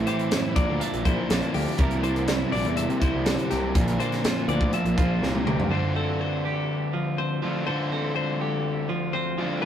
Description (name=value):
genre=math rock and midwest emo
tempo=122 BPM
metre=4/4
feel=straight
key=unclear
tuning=A4 = 440 Hz
part: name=twelve-string electric guitar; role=accompaniment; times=0.0-9.7 s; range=F2 to Bb4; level=-29 LUFS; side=right 2 dB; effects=spring reverb
part: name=overdriven semi-hollow guitar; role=riff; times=0.0-9.7 s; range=A2 to F4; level=-28 LUFS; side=left 1 dB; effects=none
part: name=fuzz picked electric bass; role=bass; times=0.0-5.7 s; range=Bb1 to C3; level=-28 LUFS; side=equal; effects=overdrive
part: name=clean electric guitar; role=arpeggios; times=0.1-9.7 s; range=G4 to E5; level=-32 LUFS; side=left 6 dB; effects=none
part: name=crisp fusion drum kit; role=drums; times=0.1-5.7 s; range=hi-hat, kick drum, snare drum, toms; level=-26 LUFS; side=equal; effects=none
room=light reverb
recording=rough rehearsal-room recording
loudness=-22 LUFS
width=side -9 dB against mid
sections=0.0-5.7 A section; 5.7-9.7 B section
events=drum fill 5.2-5.7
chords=0.0 Am7; 0.6 Bbadd9; 1.8 C9; 3.8 Bbadd9; 5.7 Dm7